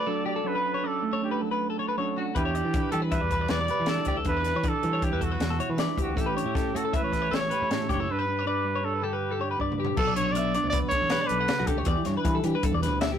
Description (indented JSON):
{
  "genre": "math rock and midwest emo",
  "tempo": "157 BPM",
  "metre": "5/4",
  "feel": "straight",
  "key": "unclear",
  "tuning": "A4 = 439 Hz",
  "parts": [
    { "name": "clear trumpet", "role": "melody", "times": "0.0-12.1 s", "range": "F#4 to D5", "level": "-29 LUFS", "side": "right 2 dB", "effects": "none" },
    { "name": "mellow electric guitar", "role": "accompaniment", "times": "0.0-13.2 s", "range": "G2 to B4", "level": "-31 LUFS", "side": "right 4 dB", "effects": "none" },
    { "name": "twelve-string electric guitar", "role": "arpeggios", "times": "0.0-13.2 s", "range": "F#4 to F#5", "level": "-31 LUFS", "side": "left 5 dB", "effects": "none" },
    { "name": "fingered electric bass", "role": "bass", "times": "2.4-13.2 s", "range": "F#1 to E3", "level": "-30 LUFS", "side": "equal", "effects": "none" },
    { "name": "compact cocktail drum kit", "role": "drums", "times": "2.4-13.1 s", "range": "crash cymbal, hi-hat, kick drum, snare drum, toms", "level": "-30 LUFS", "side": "left 1 dB", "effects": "none" }
  ],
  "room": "light reverb",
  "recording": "rough rehearsal-room recording, warm saturation",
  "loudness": "-24 LUFS",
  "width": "side -8 dB against mid",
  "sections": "0.0-10.0 A section; 10.0-13.2 B section",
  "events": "drum fill 9.6-10.0",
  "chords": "0.0 Dmaj7/F#; 2.4 Em7; 6.2 A7; 8.1 G; 10.0 Bm9; 11.9 Em7"
}